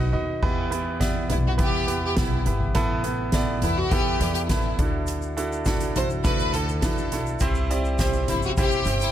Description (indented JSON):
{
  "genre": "piano-driven pop",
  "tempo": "103 BPM",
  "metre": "4/4",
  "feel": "straight",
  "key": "E minor",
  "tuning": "A4 = 445 Hz",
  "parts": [
    { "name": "rich studio violin section", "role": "melody", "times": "0.0-9.1 s", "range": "E4 to G5", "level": "-28 LUFS", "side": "left 2 dB", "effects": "none" },
    { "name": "clear baby grand piano", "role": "accompaniment", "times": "0.0-9.1 s", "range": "A2 to F#5", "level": "-27 LUFS", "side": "right 2 dB", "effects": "none" },
    { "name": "upright bass", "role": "bass", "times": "0.0-9.1 s", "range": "G1 to E2", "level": "-28 LUFS", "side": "equal", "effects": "none" },
    { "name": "soft-mallet drum kit", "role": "drums", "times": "0.4-9.1 s", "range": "crash cymbal, hi-hat, kick drum, snare drum, toms", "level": "-26 LUFS", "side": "equal", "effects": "none" },
    { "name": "tube shaker", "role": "percussion", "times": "5.1-9.1 s", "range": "none", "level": "-43 LUFS", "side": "left 11 dB", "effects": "none" }
  ],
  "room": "light reverb",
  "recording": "none",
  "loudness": "-21 LUFS",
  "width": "side -11 dB against mid",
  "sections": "0.4-9.1 A section",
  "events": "none",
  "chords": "0.4 Em; 2.8 Asus2; 4.8 Dadd9; 7.4 C"
}